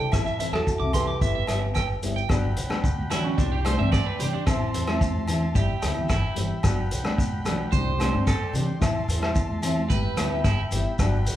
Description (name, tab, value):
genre	highlife guitar band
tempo	110 BPM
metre	4/4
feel	straight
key	unclear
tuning	A4 = 440 Hz
part	fingerpicked old ladder-braced acoustic guitar	melody	0.0-2.0 s	E4 to B4	-31 LUFS	right 2 dB	none
part	nylon-string guitar	accompaniment	0.0-11.2 s	E3 to E4	-31 LUFS	left 3 dB	none
part	electric guitar at the edge of break-up	arpeggios	0.0-10.6 s	C4 to D6	-30 LUFS	right 5 dB	none
part	upright bass	bass	0.0-11.4 s	G1 to C3	-28 LUFS	equal	none
part	vintage drum kit	drums	0.1-11.4 s	hi-hat, kick drum, rim click	-27 LUFS	equal	none
part	agogo bells	percussion	0.1-11.1 s	none	-35 LUFS	left 1 dB	none
part	shekere	percussion	0.1-11.4 s	none	-33 LUFS	equal	none
part	combo organ	sustained chords	2.3-11.4 s	D5 to C6	-37 LUFS	left 1 dB	none
part	congas	percussion	2.7-10.8 s	none	-32 LUFS	right 1 dB	none
room	moderate large studio reverb, RT60 1.4 s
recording	band playing live in one room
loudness	-22 LUFS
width	side -12 dB against mid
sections	0.0-2.3 A section; 2.3-11.4 B section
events	clean electric guitar solo 2.3-11.4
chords	0.1 Am; 1.2 Em/G; 2.3 Gmaj7; 3.4 Csus2; 4.5 Am; 5.6 Em/G; 6.6 Gmaj7; 7.7 Csus2; 8.8 Am; 9.9 Em/G